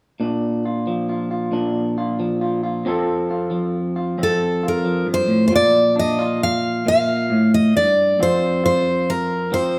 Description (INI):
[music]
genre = folk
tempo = 45 BPM (dotted quarters)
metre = 6/8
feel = straight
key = Bb major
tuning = A4 = 441 Hz
[part]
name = electric guitar through a small old amp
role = accompaniment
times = 0.2-9.8 s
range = F2 to A4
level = -22 LUFS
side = equal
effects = none
[part]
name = picked steel-string acoustic guitar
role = melody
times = 4.2-9.8 s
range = A4 to F5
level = -20 LUFS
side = equal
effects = none
[sound]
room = moderate scoring stage reverb, RT60 1.6 s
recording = close, detailed microphones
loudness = -19 LUFS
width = mono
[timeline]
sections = 0.2-5.5 A section; 5.5-9.8 B section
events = none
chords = 0.2 Bb; 2.9 F; 5.5 Bb; 8.2 F5